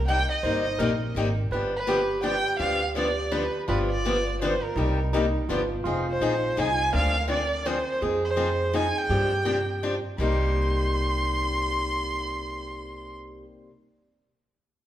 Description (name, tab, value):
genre	acoustic string swing (jazz manouche)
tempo	166 BPM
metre	3/4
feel	swing 61% on 8ths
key	C minor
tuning	A4 = 440 Hz
part	warm violin	melody	0.0-13.1 s	Bb4 to C6	-28 LUFS	right 1 dB	none
part	overdriven tine electric piano	second line	0.0-13.4 s	Eb4 to C5	-32 LUFS	right 3 dB	none
part	upright bass	bass	0.0-13.4 s	F1 to G2	-29 LUFS	equal	none
part	picked steel-string acoustic guitar	accompaniment	0.1-13.7 s	C3 to Ab4	-28 LUFS	left 3 dB	none
room	wet large studio reverb, RT60 1.4 s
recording	band playing live in one room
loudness	-23 LUFS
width	side -12 dB against mid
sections	0.0-5.9 A section; 5.9-10.2 B section; 10.2-12.4 C section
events	none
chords	0.0 Cm7; 1.5 G7; 4.8 Cm7; 5.5 G7; 5.9 Fm7; 6.9 Dm7b5; 8.0 Fm7; 9.1 G7sus4; 10.2 Cm7